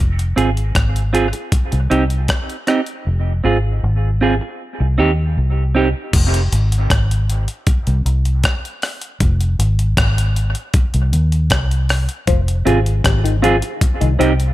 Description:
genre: dub reggae.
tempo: 78 BPM.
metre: 4/4.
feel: straight.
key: F minor.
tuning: A4 = 440 Hz.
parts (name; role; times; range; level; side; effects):
vintage muted fingered electric bass; bass; 0.0-14.5 s; F1 to Eb2; -16 LUFS; equal; none.
breakbeat sampler-style drum kit; drums; 0.2-14.5 s; crash cymbal, hi-hat, kick drum, rim click; -18 LUFS; equal; none.
semi-hollow electric guitar; accompaniment; 0.4-5.9, 12.7-14.3 s; C4 to Ab4; -19 LUFS; right 3 dB; lush chorus, dub echo.
muted clav; arpeggios; 12.3-14.3 s; C3 to F3; -23 LUFS; left 8 dB; phaser, dub echo.
room: digital ambience.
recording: none.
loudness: -14 LUFS.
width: side -16 dB against mid.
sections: 0.0-6.1 A section; 6.1-14.5 B section.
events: part muted 3.1-6.1.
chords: 0.0 Fm; 1.5 Cm; 3.1 Fm; 4.6 Cm; 6.1 Fm; 7.7 N.C.; 9.2 Fm; 10.7 Cm; 12.3 Fm; 13.8 Cm.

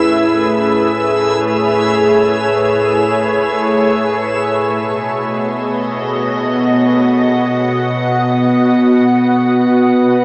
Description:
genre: ambient.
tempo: free time.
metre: none.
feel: none.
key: B mixolydian.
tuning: A4 = 441 Hz.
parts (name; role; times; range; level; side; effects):
glassy FM pad; sustained chords; 0.0-10.2 s; A2 to F#5; -12 LUFS; equal; ensemble chorus, built-in reverb.
backwards swelling texture; texture; 0.0-4.5 s; E4 to E6; -20 LUFS; equal; built-in reverb.
room: wet shimmer reverb, RT60 8.8 s.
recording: small speaker sound.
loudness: -11 LUFS.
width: side -28 dB against mid.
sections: 0.0-4.5 A section; 4.5-10.2 B section.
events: none.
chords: 0.0 Amaj9; 4.5 B.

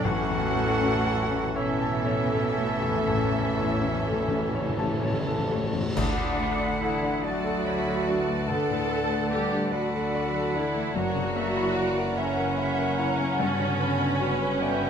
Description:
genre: classical, romantic movement for piano and orchestra.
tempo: 39-50 BPM (dotted quarters).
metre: 12/8.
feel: rubato.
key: D major.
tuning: A4 = 440 Hz.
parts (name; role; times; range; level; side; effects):
clear concert grand piano; melody; 0.0-14.9 s; A1 to A5; -29 LUFS; left 4 dB; none.
rich studio violin section; melody; 0.0-14.9 s; E5 to B5; -40 LUFS; left 3 dB; none.
clear clarinet; second line; 0.0-14.9 s; C#4 to G5; -37 LUFS; left 1 dB; none.
mellow hollow silver concert flute; second line; 0.0-14.9 s; A4 to F#5; -36 LUFS; left 1 dB; none.
mellow oboe; second line; 0.0-14.9 s; E4 to B5; -36 LUFS; right 2 dB; none.
warm symphonic violin section; second line; 0.0-14.9 s; C#4 to B5; -36 LUFS; equal; none.
rich symphonic viola section; accompaniment; 0.0-14.9 s; E3 to A4; -31 LUFS; right 1 dB; none.
warm bassoon; accompaniment; 0.0-14.9 s; E3 to E4; -35 LUFS; right 3 dB; none.
mellow French horn section; sustained chords; 0.0-14.9 s; D3 to D4; -36 LUFS; left 5 dB; none.
mellow trumpet; stabs; 0.0-5.6 s; A4; -35 LUFS; right 3 dB; none.
rich symphonic cello section; bass; 0.0-14.9 s; A2 to A3; -35 LUFS; right 4 dB; none.
rich symphonic double bass section; bass; 0.1-14.9 s; F#1 to D2; -35 LUFS; right 5 dB; none.
cymbal swell, clash cymbals and concert bass drum; percussion; 0.1-7.6 s; none; -38 LUFS; right 1 dB; none.
timpani; percussion; 0.1-7.2 s; A2 to D3; -33 LUFS; left 2 dB; none.
room: moderate recital hall reverb, RT60 1.5 s.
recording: close, detailed microphones.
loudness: -24 LUFS.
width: side -7 dB against mid.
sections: 0.0-6.0 A section; 6.0-14.9 B section.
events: timpani fill 0.1-6.0; band accent 6.0-6.8.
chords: 0.1 A; 6.0 D; 11.0 F#7; 13.4 Gmaj7.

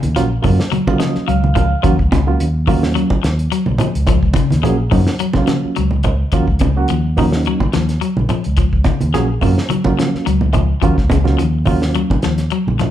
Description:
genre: afrobeat.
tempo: 107 BPM.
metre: 4/4.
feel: swing 54% on 16ths.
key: Eb minor.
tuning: A4 = 440 Hz.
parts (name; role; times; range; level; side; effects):
electric guitar at the edge of break-up; arpeggios; 0.0-12.9 s; Db3 to Gb3; -21 LUFS; left 7 dB; none.
fingered electric bass; bass; 0.0-12.8 s; Bb1 to Db3; -17 LUFS; equal; none.
cloth-damped thuddy drum kit; drums; 0.0-12.9 s; hi-hat, kick drum, snare drum; -19 LUFS; equal; none.
congas; percussion; 0.0-12.9 s; none; -20 LUFS; right 2 dB; none.
barky reed electric piano; accompaniment; 0.2-12.1 s; Gb3 to F5; -19 LUFS; right 4 dB; overdrive, fast tremolo.
room: moderate large studio reverb, RT60 0.8 s.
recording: band playing live in one room.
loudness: -13 LUFS.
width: side -11 dB against mid.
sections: 0.0-12.9 A section.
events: reed electric piano fill 0.7-1.8.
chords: 0.0 Ebm9.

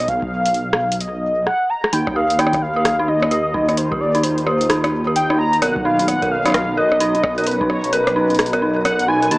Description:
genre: IDM.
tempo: 130 BPM.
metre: 4/4.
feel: swing 62% on 16ths.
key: unclear.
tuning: A4 = 439 Hz.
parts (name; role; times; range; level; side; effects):
warm velvety synth lead; melody; 0.0-9.4 s; B4 to Bb5; -19 LUFS; equal; chorus.
dark detuned saw bass; bass; 0.0-9.4 s; B1 to Eb2; -24 LUFS; equal; none.
electro analog drum machine; drums; 0.1-9.4 s; hi-hat, rim click; -22 LUFS; equal; none.
electronic kick drum; drums; 0.1-7.7 s; none; -33 LUFS; equal; none.
glassy FM pad; sustained chords; 2.8-9.4 s; B2 to A#5; -29 LUFS; left 1 dB; ensemble chorus, built-in reverb, vintage 12-bit sampler grit.
dark detuned synth bell; arpeggios; 1.9-9.4 s; Eb4 to A#4; -20 LUFS; right 1 dB; chorus.
room: light reverb.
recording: dry, gritty hardware recording, small speaker sound.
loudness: -15 LUFS.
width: side -21 dB against mid.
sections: 0.0-1.9 A section; 1.9-9.4 B section.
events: drum fill 1.5-1.9.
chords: 0.0 B; 1.9 Ebadd9; 5.6 Bmaj7.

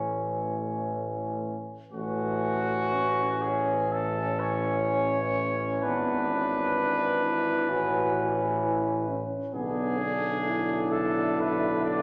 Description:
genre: classical, hymn-like piece for brass band.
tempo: 56-66 BPM.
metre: 4/4.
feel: rubato.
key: A major.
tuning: A4 = 440 Hz.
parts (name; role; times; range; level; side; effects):
warm cornet; melody; 0.0-12.0 s; F#4 to D5; -33 LUFS; equal; none.
warm flugelhorn; second line; 0.0-12.0 s; C#4 to D4; -34 LUFS; equal; none.
clear euphonium; accompaniment; 0.0-12.0 s; A3 to F#4; -35 LUFS; equal; none.
warm trombone; accompaniment; 0.0-12.0 s; D3 to E3; -36 LUFS; equal; none.
warm tuba; bass; 0.0-12.0 s; G#1 to B1; -36 LUFS; equal; none.
room: wet concert hall reverb, RT60 1.8 s.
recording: none.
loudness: -28 LUFS.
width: mono.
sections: 0.0-1.9 A section; 1.9-12.0 A section.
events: none.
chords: 0.0 A; 5.8 E7/G#; 7.7 A; 9.5 Bm.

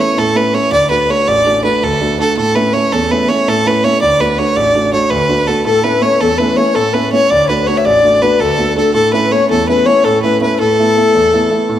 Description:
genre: celtic folk.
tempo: 109 BPM (dotted quarters).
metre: 9/8.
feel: straight.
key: A major.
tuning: A4 = 440 Hz.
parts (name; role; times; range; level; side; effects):
rich fiddle; melody; 0.0-11.8 s; A4 to E5; -13 LUFS; right 1 dB; none.
warm grand piano; accompaniment; 0.0-11.8 s; A1 to F#4; -16 LUFS; right 2 dB; none.
baroque flute; second line; 5.7-11.8 s; A4 to D5; -14 LUFS; left 6 dB; none.
room: wet recital hall reverb, RT60 1.8 s.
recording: none.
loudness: -10 LUFS.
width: side -11 dB against mid.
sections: 0.0-11.8 A section.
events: none.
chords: 0.0 A; 0.7 D; 2.4 A; 4.0 D; 5.7 A; 7.3 D; 9.0 A; 10.6 Asus2.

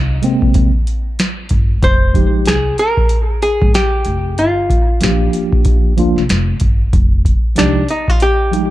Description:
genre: hip hop, jazz-hop.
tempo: 94 BPM.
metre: 4/4.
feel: swing 59% on 16ths.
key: F dorian.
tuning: A4 = 440 Hz.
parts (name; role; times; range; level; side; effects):
archtop guitar, miked and amplified; melody; 0.0-8.7 s; D4 to C5; -17 LUFS; equal; analog delay.
upright bass; bass; 0.0-7.8 s; F1 to Eb2; -18 LUFS; equal; none.
mellow tine electric piano; accompaniment; 0.2-8.7 s; C3 to G4; -17 LUFS; right 1 dB; fast stereo tremolo.
booming analog drum machine; drums; 0.2-8.7 s; hi-hat, kick drum, snare drum; -14 LUFS; equal; vintage 12-bit sampler grit.
room: little or no reverb.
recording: dark, warm production.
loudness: -12 LUFS.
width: side -15 dB against mid.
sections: 0.0-6.9 A section; 6.9-8.7 B section.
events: hollow-body jazz guitar solo 6.9-8.7.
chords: 0.0 Abmaj9; 1.8 Fm9; 4.4 Gm7; 6.9 Fm9.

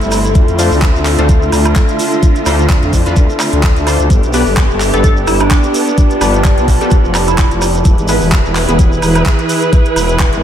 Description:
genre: bass house.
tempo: 128 BPM.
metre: 4/4.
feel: swing 56% on 16ths.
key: unclear.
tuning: A4 = 436 Hz.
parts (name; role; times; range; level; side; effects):
warm symphonic string section; sustained chords; 0.0-10.4 s; D3 to B4; -17 LUFS; right 2 dB; sidechain pumping.
growling FM bass; bass; 0.0-10.4 s; E1 to F2; -16 LUFS; equal; sidechain pumping.
garage drum kit; drums; 0.0-10.4 s; handclaps, hi-hat, woodblock; -20 LUFS; right 1 dB; none.
shekere; percussion; 0.0-10.4 s; none; -27 LUFS; right 2 dB; none.
warbly tape-like pad; texture; 0.0-10.4 s; D4 to B5; -19 LUFS; left 1 dB; chorus, built-in reverb, sidechain pumping.
electronic kick drum; drums; 0.4-10.3 s; none; -11 LUFS; equal; none.
orchestra-hit-like synth stab; stabs; 0.6-8.8 s; B3 to C5; -20 LUFS; left 1 dB; built-in reverb, sidechain pumping, tape echo.
glassy wavetable pluck; melody; 4.9-7.7 s; D4 to A4; -20 LUFS; right 2 dB; chorus, tape echo.
room: moderate lush hall reverb, RT60 2.1 s.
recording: dreamy mix soaked in reverb.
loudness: -9 LUFS.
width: side -10 dB against mid.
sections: 0.0-10.4 A section.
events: none.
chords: 0.4 Dm7; 4.1 G; 7.9 E.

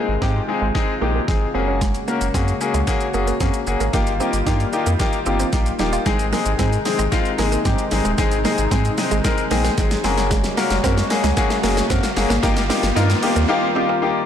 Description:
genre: dance-pop.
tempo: 113 BPM.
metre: 4/4.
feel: straight.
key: Ab major.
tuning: A4 = 440 Hz.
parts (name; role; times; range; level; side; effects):
clear concert grand piano; accompaniment; 0.0-14.2 s; Ab3 to Bb5; -21 LUFS; left 5 dB; sidechain pumping.
chorused pulse-width pad; sustained chords; 0.0-14.3 s; C3 to Gb4; -28 LUFS; equal; sidechain pumping.
direct-recorded clean electric guitar; riff; 0.0-14.1 s; Ab3 to F4; -27 LUFS; right 6 dB; analog chorus, low-pass filter.
warm sub bass; bass; 0.1-13.5 s; Eb1 to Ab2; -22 LUFS; right 1 dB; sidechain pumping.
pop drum kit; drums; 0.2-13.5 s; hi-hat, kick drum, shaker, snare drum; -22 LUFS; right 1 dB; none.
riser; sound effects; 8.3-13.5 s; none; -30 LUFS; equal; none.
room: moderate lush hall reverb, RT60 1.6 s, digital ambience.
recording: blown-out, overdriven recording, overdrive.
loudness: -17 LUFS.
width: side -9 dB against mid.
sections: 0.0-14.3 A section.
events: build-up 0.0-14.3; drum fill 0.0-13.5; grand piano fill 9.2-10.3.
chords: 0.0 Ab; 1.5 Gbadd9; 3.9 Ebadd9/G; 6.1 Ab; 10.0 Gbadd9; 12.4 Ebadd9/G.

